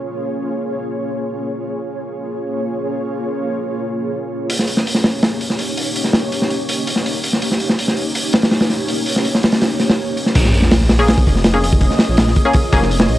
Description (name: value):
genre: drum and bass, jungle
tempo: 164 BPM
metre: 4/4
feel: straight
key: Bb dorian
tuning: A4 = 439 Hz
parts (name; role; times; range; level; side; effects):
- ethereal airy pad; sustained chords; 0.0-13.2 s; Bb3 to Db5; -22 LUFS; equal; ensemble chorus, built-in reverb, tremolo
- crunchy breakbeat drum kit; drums; 4.5-13.2 s; crash cymbal, hi-hat, kick drum, snare drum; -15 LUFS; equal; none
- sub drop; sound effects; 10.3-11.8 s; none; -24 LUFS; equal; none
- dark detuned saw bass; bass; 10.4-13.2 s; F1 to Bb1; -16 LUFS; equal; tube saturation
- backwards swelling texture; texture; 10.8-13.2 s; Eb5 to Eb6; -28 LUFS; right 1 dB; built-in reverb
- filtered dub chord stab; stabs; 11.0-12.8 s; Bb3 to Ab4; -19 LUFS; left 2 dB; chorus, dub echo
room: light reverb, studio reverb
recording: dry, gritty hardware recording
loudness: -15 LUFS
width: side -14 dB against mid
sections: 0.0-10.3 A section; 10.3-13.2 B section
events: filter sweep on ambient pad 0.0-10.3; drop 10.3-13.2; impact 10.3-11.8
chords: 0.0 Bbm7; 4.5 Eb7; 10.3 Bbm7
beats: | 0.10 0.47 0.84 1.20 | 1.57 1.93 2.30 2.67 | 3.03 3.40 3.76 4.13 | 4.49 4.86 5.23 5.59 | 5.96 6.32 6.69 7.05 | 7.42 7.79 8.15 8.52 | 8.88 9.25 9.62 9.98 | 10.35 10.71 11.08 11.45 | 11.81 12.18 12.54 12.91